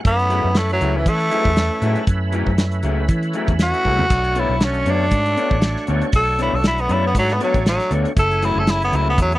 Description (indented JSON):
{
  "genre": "straight-eighth soul blues",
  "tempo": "118 BPM",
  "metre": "4/4",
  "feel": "swing 55% on 16ths",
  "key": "F# minor",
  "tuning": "A4 = 440 Hz",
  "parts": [
    { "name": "overdriven tonewheel organ", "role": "accompaniment", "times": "0.0-9.4 s", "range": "A3 to C#5", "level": "-28 LUFS", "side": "right 4 dB", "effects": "slow rotary speaker, chorus vibrato" },
    { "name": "warm soul drum kit", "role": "drums", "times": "0.0-9.4 s", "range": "crash cymbal, hi-hat, kick drum, snare drum, toms", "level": "-19 LUFS", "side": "equal", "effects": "none" },
    { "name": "raspy tenor saxophone", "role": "melody", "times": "0.1-9.4 s", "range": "E3 to A4", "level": "-19 LUFS", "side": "equal", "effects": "none" },
    { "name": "vintage muted fingered electric bass", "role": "bass", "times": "0.1-9.4 s", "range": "F#1 to E3", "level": "-21 LUFS", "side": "equal", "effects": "none" },
    { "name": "electric guitar through a small old amp", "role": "stabs", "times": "0.3-9.1 s", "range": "F#3 to C#5", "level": "-24 LUFS", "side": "left 4 dB", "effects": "none" }
  ],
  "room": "little or no reverb",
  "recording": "dry, close 1970s-style studio recording",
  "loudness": "-16 LUFS",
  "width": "side -16 dB against mid",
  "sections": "0.0-9.4 A section",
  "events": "tenor saxophone solo 0.0-9.4; drum fill 3.9",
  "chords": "0.0 F#m9; 4.1 Bm9; 8.2 F#m9"
}